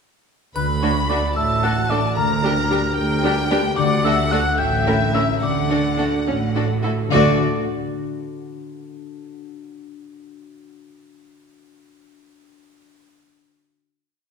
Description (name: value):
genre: cinematic, playful, whimsical film cue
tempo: 73 BPM (dotted quarters)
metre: 6/8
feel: straight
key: D major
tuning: A4 = 439 Hz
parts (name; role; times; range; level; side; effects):
- rich chamber violin section; melody; 0.6-7.4 s; D5 to B5; -26 LUFS; left 3 dB; none
- xylophone with soft rubber mallets; melody; 0.6-7.4 s; Bb5 to G6; -28 LUFS; left 4 dB; none
- mellow oboe; second line; 0.6-7.4 s; Bb4 to G5; -25 LUFS; right 1 dB; none
- concert harp; arpeggios; 0.6-8.8 s; A2 to F#5; -26 LUFS; left 5 dB; none
- rich chamber double bass section; bass; 0.6-7.4 s; A1 to D2; -25 LUFS; right 3 dB; none
- rich symphonic cello section; bass; 0.6-7.4 s; D2 to D3; -26 LUFS; right 4 dB; none
- triangle; percussion; 0.6-1.6 s; none; -46 LUFS; left 3 dB; none
- bright chamber violin section; second line; 0.8-7.4 s; E4 to Bb4; -28 LUFS; left 2 dB; none
- rich studio viola section; accompaniment; 0.8-7.4 s; G3 to E4; -26 LUFS; right 2 dB; none
room: wet scoring stage reverb, RT60 1.7 s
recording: minimal, uncompressed stereo recording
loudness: -17 LUFS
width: side -5 dB against mid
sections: 0.5-7.1 A section; 7.1-8.8 final chord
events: none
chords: 0.5 D; 2.2 Gm/D; 3.8 D; 4.6 A7b9; 5.4 D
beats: | 0.55 1.36 | 2.17 2.97 | 3.78 4.60 | 5.43 6.27 | 7.12 7.97